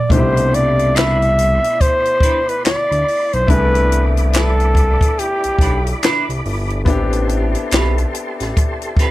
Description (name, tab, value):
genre	R&B, neo-soul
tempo	71 BPM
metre	4/4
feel	swing 61% on 16ths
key	C major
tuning	A4 = 440 Hz
part	warm flugelhorn	melody	0.0-6.0 s	G4 to E5	-17 LUFS	equal	none
part	warm concert grand piano	accompaniment	0.1-9.1 s	B2 to A4	-24 LUFS	left 4 dB	none
part	tonewheel organ	sustained chords	0.1-9.1 s	E4 to D6	-28 LUFS	equal	slow rotary speaker, chorus vibrato
part	smooth synth bass	bass	0.1-8.5 s	G1 to D2	-17 LUFS	equal	none
part	compact cocktail drum kit	drums	0.1-9.1 s	handclaps, hi-hat, kick drum, snare drum	-17 LUFS	equal	none
part	semi-hollow electric guitar	second line	0.9-9.1 s	C4 to B4	-21 LUFS	right 4 dB	lush chorus
room	little or no reverb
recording	none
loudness	-13 LUFS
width	side -16 dB against mid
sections	0.1-9.1 A section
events	none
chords	0.1 Cmaj9; 6.9 Am9